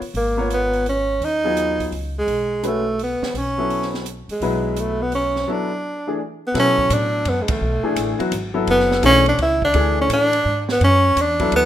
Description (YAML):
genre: modal jazz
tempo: 169 BPM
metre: 3/4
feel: swing 65% on 8ths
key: B dorian from 6.5 s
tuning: A4 = 439 Hz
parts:
  - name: upright bass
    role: bass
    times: 0.0-11.7 s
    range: F#1 to B2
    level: -24 LUFS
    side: equal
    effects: none
  - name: open jazz drum kit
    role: drums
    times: 0.0-11.6 s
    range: hi-hat, kick drum, ride cymbal, snare drum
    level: -30 LUFS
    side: right 2 dB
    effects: none
  - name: breathy tenor saxophone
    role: melody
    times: 0.2-11.7 s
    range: G#3 to E4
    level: -18 LUFS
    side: right 1 dB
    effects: none
  - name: clear baby grand piano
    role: accompaniment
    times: 0.4-11.7 s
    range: E3 to C#5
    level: -24 LUFS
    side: left 4 dB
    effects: none
room: moderate large studio reverb, RT60 1.1 s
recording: minimal, uncompressed stereo recording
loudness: -17 LUFS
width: side -11 dB against mid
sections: 0.0-6.5 A section; 6.5-11.7 B section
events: break 5.5-6.5; band accent 7.4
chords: 0.0 G#m9; 2.3 B7sus2; 6.5 Bm9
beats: | 0.14 0.50 0.86 | 1.21 1.57 1.93 | 2.28 2.64 2.99 | 3.35 3.70 4.06 | 4.42 4.77 5.13 | 5.48 5.84 6.20 | 6.55 6.91 7.26 | 7.62 7.97 8.33 | 8.68 9.04 9.39 | 9.75 10.10 10.46 | 10.81 11.17 11.52